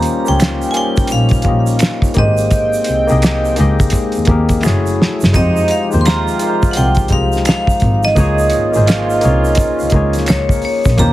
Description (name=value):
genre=R&B, neo-soul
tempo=85 BPM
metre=4/4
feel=swing 62% on 16ths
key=unclear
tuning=A4 = 440 Hz
part: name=vibraphone with hard mallets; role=melody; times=0.0-11.1 s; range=Db5 to C6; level=-18 LUFS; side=right 2 dB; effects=none
part: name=barky tine electric piano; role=accompaniment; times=0.0-11.1 s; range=Ab3 to Eb5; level=-19 LUFS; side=left 4 dB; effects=overdrive
part: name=chorused pulse-width pad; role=sustained chords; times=0.0-11.1 s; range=F3 to G5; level=-26 LUFS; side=right 1 dB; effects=none
part: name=cloth-damped thuddy drum kit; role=drums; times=0.0-11.1 s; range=hi-hat, kick drum, snare drum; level=-15 LUFS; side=equal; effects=none
part: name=egg shaker and finger snaps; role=percussion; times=0.0-11.1 s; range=none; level=-29 LUFS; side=right 4 dB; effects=none
part: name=warm double bass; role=bass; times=0.3-11.1 s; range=Gb1 to F2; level=-15 LUFS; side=equal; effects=none
part: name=mellow horn section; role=stabs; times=5.3-9.9 s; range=Bb2 to Ab4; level=-23 LUFS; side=right 5 dB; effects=none
room=studio ambience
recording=heavily compressed radio sound, multiband compression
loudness=-11 LUFS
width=side -15 dB against mid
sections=0.0-11.1 A section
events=drum fill 4.6-5.3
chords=0.0 Eb13; 2.2 Abmaj9; 4.6 Gbm9; 5.3 Fm9; 8.2 Db69